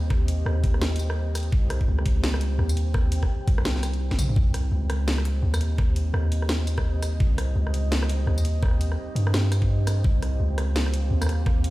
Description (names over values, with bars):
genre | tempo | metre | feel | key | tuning
half-time drum and bass | 169 BPM | 4/4 | swing 60% on 16ths, half-time | C phrygian | A4 = 440 Hz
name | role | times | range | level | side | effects
deep dark ambient pad | sustained chords | 0.0-11.7 s | C4 to G5 | -34 LUFS | right 1 dB | chorus, built-in reverb, sidechain pumping
long sustained 808-style bass | bass | 0.0-11.7 s | Bb1 to G2 | -23 LUFS | equal | none
drum and bass drum kit | drums | 0.1-11.7 s | hi-hat, rim click, snare drum, tambourine, toms | -31 LUFS | equal | none
electronic kick drum | drums | 0.1-11.5 s | none | -23 LUFS | equal | none
room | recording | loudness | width
little or no reverb | played on a big sound system in a bare room, stone room reverb | -21 LUFS | side -18 dB against mid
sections
0.0-4.4 A section; 4.4-11.7 A section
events
drop 0.0-4.4, 4.4-11.7; drum fill 4.1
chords
0.0 Cm